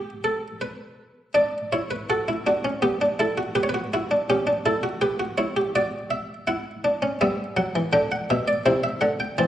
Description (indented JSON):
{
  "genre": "classical, baroque-style 3-part fugue for harpsichord",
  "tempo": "82 BPM",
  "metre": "4/4",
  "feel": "straight",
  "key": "G major",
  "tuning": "A4 = 440 Hz",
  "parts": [
    { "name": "buff-stop harpsichord", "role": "solo", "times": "0.0-9.5 s", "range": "B2 to A5", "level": "-22 LUFS", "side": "equal", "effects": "none" }
  ],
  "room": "wet recital hall reverb, RT60 1.4 s",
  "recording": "worn, warbling old tape, cassette tape, warbly pitch drift",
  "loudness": "-22 LUFS",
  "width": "side -11 dB against mid",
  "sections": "0.0-9.5 A section",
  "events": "none",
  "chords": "0.0 N.C.; 1.3 D; 2.8 G/B; 4.3 A7/C#; 5.8 D/F#; 7.2 G; 8.7 C",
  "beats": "0.61 | 1.34 2.08 2.81 3.55 | 4.28 5.02 5.75 6.48 | 7.21 7.93 8.65 9.38"
}